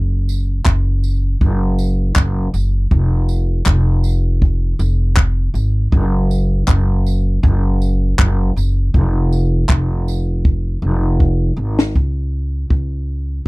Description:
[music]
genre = acoustic pop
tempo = 80 BPM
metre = 4/4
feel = swing 55% on 16ths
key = unclear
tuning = A4 = 438 Hz
[part]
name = upright bass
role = bass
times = 0.0-13.5 s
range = F1 to C#2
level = -15 LUFS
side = equal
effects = none
[part]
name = compact cocktail drum kit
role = drums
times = 0.3-12.9 s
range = handclaps, kick drum, snare drum, tambourine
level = -15 LUFS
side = equal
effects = none
[sound]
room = little or no reverb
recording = dry, close 1970s-style studio recording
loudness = -14 LUFS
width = side -23 dB against mid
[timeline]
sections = 0.0-12.0 A section; 12.0-13.5 B section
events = drum fill 10.4-12.0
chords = none

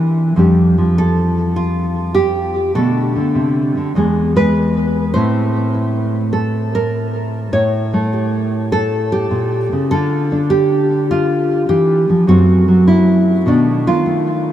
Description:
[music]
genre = solo jazz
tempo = 101 BPM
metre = 4/4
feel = swing 69% on 8ths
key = unclear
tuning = A4 = 440 Hz
[part]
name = nylon-string guitar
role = solo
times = 0.0-14.5 s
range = E2 to C#5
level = -13 LUFS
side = equal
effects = wide subtle chorus, diffuse ambient delay
[sound]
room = moderate huge ambient reverb, RT60 7.3 s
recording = dreamy mix soaked in reverb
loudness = -13 LUFS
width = side -11 dB against mid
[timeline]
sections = 0.0-14.5 A section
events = none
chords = 0.4 F69; 2.7 Bm7; 3.9 E7; 5.1 Am; 7.5 A7b9; 9.9 Dm; 12.3 F#m7b5; 13.4 B7#9

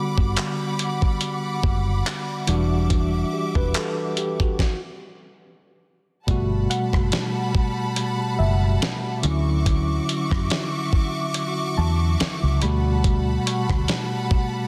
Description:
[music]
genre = contemporary R&B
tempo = 71 BPM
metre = 4/4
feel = swing 54% on 16ths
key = unclear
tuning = A4 = 439 Hz
[part]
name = tine electric piano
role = accompaniment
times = 0.0-14.7 s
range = B2 to B4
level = -28 LUFS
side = equal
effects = none
[part]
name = warm studio string section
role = sustained chords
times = 0.0-14.7 s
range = G3 to D6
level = -32 LUFS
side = equal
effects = none
[part]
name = vintage muted fingered electric bass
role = bass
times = 0.2-13.9 s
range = E1 to F#2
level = -24 LUFS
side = equal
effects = none
[part]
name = dusty soul sampler-style drum kit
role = drums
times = 0.2-14.5 s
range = handclaps, hi-hat, kick drum, rim click, snare drum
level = -26 LUFS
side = equal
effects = none
[part]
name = soft round pluck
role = texture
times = 6.7-14.7 s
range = E5 to C#6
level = -36 LUFS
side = equal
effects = chorus, delay
[sound]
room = light reverb, digital ambience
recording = dense, heavily limited modern master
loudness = -23 LUFS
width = mono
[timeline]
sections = 0.0-6.3 A section; 6.3-14.7 B section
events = stop 4.6-6.3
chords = 0.0 Gmaj7; 2.5 Em9; 6.3 Gmaj9; 9.2 Dmaj9; 12.6 Gmaj9/D

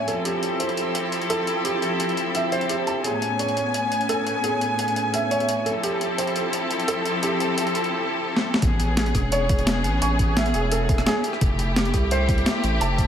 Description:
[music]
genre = liquid drum and bass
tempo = 172 BPM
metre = 4/4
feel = straight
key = unclear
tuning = A4 = 445 Hz
[part]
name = rich studio string section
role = sustained chords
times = 0.0-13.1 s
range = A2 to G#5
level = -24 LUFS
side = left 1 dB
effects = sidechain pumping
[part]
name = felt-muted upright piano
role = arpeggios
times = 0.0-13.1 s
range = G4 to C#6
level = -26 LUFS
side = right 2 dB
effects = tape echo
[part]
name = breakbeat sampler-style drum kit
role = drums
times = 0.1-13.1 s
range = hi-hat, rim click, snare drum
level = -27 LUFS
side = left 1 dB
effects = overdrive
[part]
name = saturated sub bass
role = bass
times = 8.6-13.1 s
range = E1 to C2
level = -24 LUFS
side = equal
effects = none
[part]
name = electronic kick drum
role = drums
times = 8.6-13.1 s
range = none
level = -23 LUFS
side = equal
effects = overdrive
[sound]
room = wet church reverb, RT60 2.8 s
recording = dreamy mix soaked in reverb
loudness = -20 LUFS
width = side -9 dB against mid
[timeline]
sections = 0.0-8.6 A section; 8.6-13.1 B section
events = filter sweep on drum 0.0-8.6; drum fill 8.4; drop 8.6-13.1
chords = 0.1 Fmaj9; 3.0 Amaj7; 5.7 Fmaj9; 8.6 Amaj7; 11.2 Fmaj9

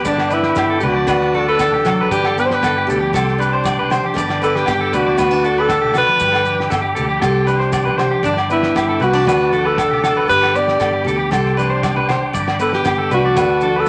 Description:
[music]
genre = highlife guitar band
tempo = 117 BPM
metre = 4/4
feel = straight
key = G major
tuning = A4 = 439 Hz
[part]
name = picked steel-string acoustic guitar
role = accompaniment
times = 0.0-13.9 s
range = G2 to G4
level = -25 LUFS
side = equal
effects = none
[part]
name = tonewheel organ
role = sustained chords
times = 0.0-13.9 s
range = F#5 to D6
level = -28 LUFS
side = equal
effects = slow rotary speaker, overdrive, chorus vibrato
[part]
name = electric guitar at the edge of break-up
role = arpeggios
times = 0.0-13.9 s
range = G4 to D5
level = -23 LUFS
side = equal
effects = none
[part]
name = fingered electric bass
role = bass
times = 0.0-13.9 s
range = G1 to D2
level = -26 LUFS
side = equal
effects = none
[part]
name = damped 70s drum kit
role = drums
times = 0.0-13.9 s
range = kick drum, snare drum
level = -30 LUFS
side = equal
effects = none
[part]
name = maracas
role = percussion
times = 0.0-13.9 s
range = none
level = -42 LUFS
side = equal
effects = none
[part]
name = breathy alto saxophone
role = melody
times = 0.1-13.9 s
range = D4 to D5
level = -19 LUFS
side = equal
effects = none
[part]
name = agogo bells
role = percussion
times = 0.2-13.5 s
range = none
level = -27 LUFS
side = equal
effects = none
[part]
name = congas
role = percussion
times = 0.8-13.7 s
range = none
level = -33 LUFS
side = equal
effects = none
[sound]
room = wet studio reverb, RT60 0.7 s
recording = none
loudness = -16 LUFS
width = mono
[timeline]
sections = 0.1-13.9 A section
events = none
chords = 0.1 G; 1.1 D; 2.1 G; 3.1 Csus2; 4.2 G; 5.2 D; 6.2 G; 7.2 Csus2; 8.2 G; 9.3 D; 10.3 G; 11.3 Csus2; 12.3 G; 13.4 D

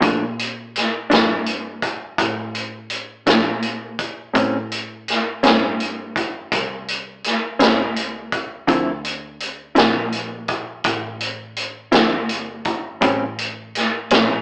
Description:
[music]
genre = slow blues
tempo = 55 BPM (dotted quarters)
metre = 12/8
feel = straight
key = D minor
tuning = A4 = 440 Hz
[part]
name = mellow electric guitar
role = accompaniment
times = 0.0-14.3 s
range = A2 to E4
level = -18 LUFS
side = equal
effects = tremolo
[part]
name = vintage muted fingered electric bass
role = bass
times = 0.0-14.4 s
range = G1 to Bb2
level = -33 LUFS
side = equal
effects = none
[part]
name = vintage drum kit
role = drums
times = 0.0-14.3 s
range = hi-hat, kick drum, snare drum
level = -19 LUFS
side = equal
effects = none
[sound]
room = moderate studio reverb, RT60 0.5 s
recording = rough rehearsal-room recording, warm saturation, AM radio sound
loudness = -18 LUFS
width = side -34 dB against mid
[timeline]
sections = 0.0-14.4 A section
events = none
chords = 0.0 Bbmaj7; 4.3 A7#9; 8.7 Dm9; 13.0 A7#9

